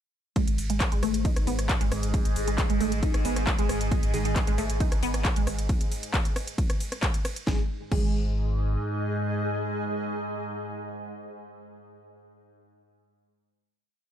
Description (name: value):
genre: driving peak-time techno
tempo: 135 BPM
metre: 4/4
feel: straight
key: unclear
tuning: A4 = 440 Hz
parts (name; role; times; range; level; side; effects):
- resonant blip pluck; riff; 0.4-8.0 s; G#3 to D#4; -32 LUFS; right 2 dB; phaser, analog chorus, sidechain pumping, dub echo
- overtone-sweeping drone; drone; 1.0-11.3 s; G#2; -35 LUFS; equal; chorus, built-in reverb, sidechain pumping
- electronic kick drum; drums; 0.4-8.1 s; none; -26 LUFS; equal; overdrive
- techno drum kit; drums; 0.4-8.1 s; crash cymbal, handclaps, hi-hat, ride cymbal, rim click, snare drum; -33 LUFS; equal; overdrive, sidechain pumping on hats, sidechain pumping on cymbals
- granular cloud pad; texture; 1.2-11.5 s; G#4 to G#5; -36 LUFS; equal; built-in reverb, sidechain pumping
- warm sub bass; bass; 0.5-8.8 s; G#1; -30 LUFS; equal; overdrive, sidechain pumping, low-pass filter
- wavetable chord stab; stabs; 4.1-4.3, 7.5-11.8 s; D#3 to G#4; -35 LUFS; right 4 dB; sidechain pumping, digital delay
room: digital ambience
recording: dark, warm production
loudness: -24 LUFS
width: side -10 dB against mid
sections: 0.4-7.5 drop; 7.5-11.0 final chord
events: drop 0.4-7.5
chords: 0.4 G#5